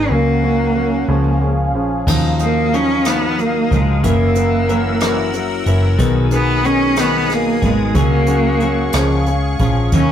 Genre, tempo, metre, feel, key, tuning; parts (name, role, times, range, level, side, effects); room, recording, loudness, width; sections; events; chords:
six-eight pop ballad; 61 BPM (dotted quarters); 6/8; straight; F# major; A4 = 440 Hz
clear cello; melody; 0.0-10.1 s; G#3 to D#4; -17 LUFS; right 1 dB
warm baby grand piano; accompaniment; 0.0-10.1 s; D#3 to D#4; -22 LUFS; equal
sweeping resonant pad; sustained chords; 0.0-10.1 s; F#3 to E6; -25 LUFS; left 1 dB; chorus
vintage muted fingered electric bass; bass; 0.0-10.1 s; F#1 to D#2; -18 LUFS; equal
twelve-string electric guitar; arpeggios; 2.1-10.1 s; B2 to A#4; -24 LUFS; left 4 dB
jazz brush drum kit; drums; 2.1-10.1 s; crash cymbal, hi-hat, kick drum, rim click; -22 LUFS; right 1 dB
light reverb; rough rehearsal-room recording; -13 LUFS; side -9 dB against mid
0.0-2.1 A section; 2.1-10.1 B section
0.1 F#/C#; 1.1 C#; 2.1 D#madd9; 4.0 F#7; 6.0 B6; 7.9 C#sus4; 8.9 C#